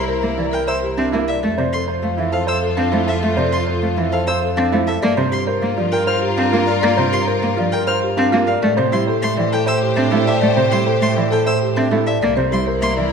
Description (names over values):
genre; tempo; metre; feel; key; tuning
classical, minimalist pattern music; 200 BPM; 6/4; straight; F major; A4 = 440 Hz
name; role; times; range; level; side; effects
marimba with medium mallets; melody; 0.0-13.1 s; G4 to F5; -21 LUFS; left 7 dB; none
rich studio string section; sustained chords; 0.0-13.1 s; E4 to C5; -25 LUFS; left 3 dB; none
rich violin; arpeggios; 0.0-12.9 s; E5 to F6; -27 LUFS; left 1 dB; none
rich double bass; bass; 0.0-13.1 s; C2 to A2; -23 LUFS; right 5 dB; none
clear grand piano; arpeggios; 0.1-13.1 s; D4 to C5; -22 LUFS; right 5 dB; none
rich cello; accompaniment; 0.2-13.1 s; C3 to C4; -22 LUFS; right 2 dB; none
room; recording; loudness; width
wet scoring stage reverb, RT60 1.8 s; none; -15 LUFS; side -6 dB against mid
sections
0.0-13.1 A section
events
none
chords
0.0 C7; 1.4 F; 5.0 Gm7; 8.6 Am7; 12.2 C7